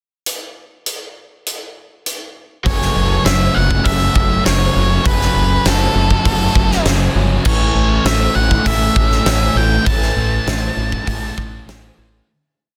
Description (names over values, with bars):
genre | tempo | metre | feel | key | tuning
rock, shoegaze and dream pop | 100 BPM | 4/4 | straight | A major | A4 = 439 Hz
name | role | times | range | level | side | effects
huge arena drum kit | drums | 0.3-11.8 s | crash cymbal, hi-hat, kick drum, snare drum | -21 LUFS | equal | none
electric guitar through a small old amp | riff | 2.6-12.3 s | F#2 to A4 | -29 LUFS | equal | none
overdriven electric guitar | riff | 2.6-12.3 s | F#3 to A4 | -29 LUFS | equal | none
thick fuzz guitar | riff | 2.6-12.3 s | F#2 to A3 | -25 LUFS | equal | distortion, analog chorus
octave-fuzz lead guitar | melody | 2.7-11.6 s | A4 to A5 | -22 LUFS | equal | distortion, digital delay
fingerpicked twelve-string acoustic guitar | arpeggios | 2.7-12.3 s | E3 to C#4 | -31 LUFS | equal | none
growling fingered electric bass | bass | 2.7-12.2 s | F#1 to A1 | -20 LUFS | equal | overdrive
room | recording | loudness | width
studio reverb | dense, heavily limited modern master | -16 LUFS | mono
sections
0.3-2.7 pickup bar; 2.7-12.3 A section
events
fade-out 9.9-12.3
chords
0.3 N.C.; 2.7 F#m7; 7.5 A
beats
| 0.26 0.86 1.46 2.06 | 2.66 3.26 3.85 4.45 | 5.05 5.65 6.25 6.85 | 7.45 8.05 8.65 9.26 | 9.86 10.46 11.07 11.67